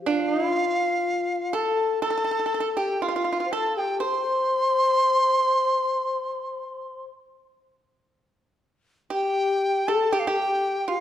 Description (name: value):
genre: chinese traditional, Chinese chamber ensemble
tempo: 60 BPM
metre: 4/4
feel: rubato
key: unclear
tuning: A4 = 440 Hz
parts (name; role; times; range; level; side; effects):
- breathy mellow low xiao; second line; 0.0-11.0 s; F4 to C5; -26 LUFS; left 5 dB; none
- steel-string zither; accompaniment; 0.0-1.0 s; F3; -50 LUFS; right 2 dB; none
- bright large dizi; melody; 0.1-11.0 s; F5 to C6; -24 LUFS; right 1 dB; none
- pipa; second line; 0.1-11.0 s; F4 to C5; -29 LUFS; right 5 dB; none
room: wet recital hall reverb, RT60 1.7 s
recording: dark, warm production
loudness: -21 LUFS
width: side -10 dB against mid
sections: 0.0-8.1 A section; 8.1-11.0 B section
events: none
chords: none